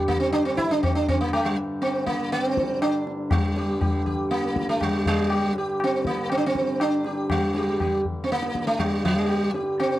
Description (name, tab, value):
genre	indian classical, Hindustani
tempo	120 BPM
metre	4/4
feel	straight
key	G raga bhimpalasi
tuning	A4 = 437 Hz
part	sitar	melody	0.0-10.0 s	G3 to G4	-23 LUFS	right 1 dB	none
part	hand-pumped harmonium	drone	0.0-10.0 s	G2 to D3	-31 LUFS	left 1 dB	none
part	tabla	percussion	0.1-10.0 s	none	-28 LUFS	left 2 dB	none
room	little or no reverb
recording	dry, close 1970s-style studio recording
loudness	-22 LUFS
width	side -14 dB against mid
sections	0.0-10.0 A section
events	none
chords	none